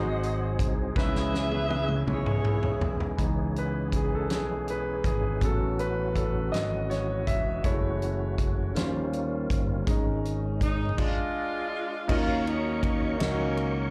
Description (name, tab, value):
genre	slow gospel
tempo	54 BPM (dotted quarters)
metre	6/8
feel	straight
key	C# minor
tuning	A4 = 440 Hz
part	bright saxophone section	melody	0.0-3.2, 10.6-13.9 s	Gb3 to E5	-34 LUFS	equal	plate reverb, slapback echo
part	clear concert grand piano	accompaniment	0.0-13.9 s	G#2 to E5	-34 LUFS	equal	plate reverb, slapback echo
part	tonewheel organ	sustained chords	0.0-13.9 s	D#3 to Db6	-38 LUFS	equal	fast rotary speaker, chorus vibrato, plate reverb
part	modern bright fingered electric bass	bass	0.0-13.9 s	E1 to D#2	-33 LUFS	equal	none
part	natural country drum kit	drums	0.2-13.7 s	crash cymbal, hi-hat, kick drum, ride cymbal, snare drum, toms	-32 LUFS	equal	none
room	light reverb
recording	live gig heard through the venue's PA, club reverb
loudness	-28 LUFS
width	mono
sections	0.0-3.2 A section; 3.2-12.1 B section; 12.1-13.9 A section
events	drum fill 1.0-3.2; grand piano solo 3.2-12.1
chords	0.0 G#7; 1.0 C#m7; 5.4 A6; 7.6 F#m7; 8.8 D#13; 9.9 G#sus4; 11.0 Ddim/Ab; 12.1 Ebm7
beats	| 0.96 2.07 | 3.19 4.30 | 5.42 6.53 | 7.64 8.76 | 9.87 10.98 | 12.09 13.19